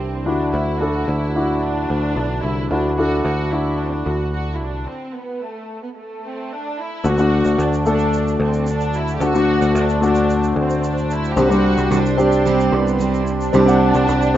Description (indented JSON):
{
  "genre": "piano-driven pop",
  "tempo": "111 BPM",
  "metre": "4/4",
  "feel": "straight",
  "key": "unclear",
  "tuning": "A4 = 440 Hz",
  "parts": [
    { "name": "warm studio violin section", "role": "melody", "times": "0.0-14.4 s", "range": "A3 to G4", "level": "-24 LUFS", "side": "right 1 dB", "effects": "none" },
    { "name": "warm concert grand piano", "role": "accompaniment", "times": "0.0-14.4 s", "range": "C3 to F#5", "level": "-19 LUFS", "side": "left 2 dB", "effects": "none" },
    { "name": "warm analog pad", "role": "sustained chords", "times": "0.0-14.4 s", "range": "C3 to C6", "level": "-29 LUFS", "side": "right 1 dB", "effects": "chorus" },
    { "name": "picked electric bass", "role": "bass", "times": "0.0-14.4 s", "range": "B1 to D2", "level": "-22 LUFS", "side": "equal", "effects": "none" },
    { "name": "tube shaker", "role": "percussion", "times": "7.0-14.3 s", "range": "none", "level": "-43 LUFS", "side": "right 5 dB", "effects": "none" },
    { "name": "picked steel-string acoustic guitar", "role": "riff", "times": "11.4-14.4 s", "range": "C3 to G4", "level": "-20 LUFS", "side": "right 7 dB", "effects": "none" }
  ],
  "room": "light reverb, studio ambience",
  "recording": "rough home demo mix, nothing above 7.6 kHz",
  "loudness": "-16 LUFS",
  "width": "side -12 dB against mid",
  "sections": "0.0-7.0 A section; 7.0-14.4 B section",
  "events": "stop 4.9-7.0",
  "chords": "0.3 Dadd9; 7.0 D; 11.4 Csus2"
}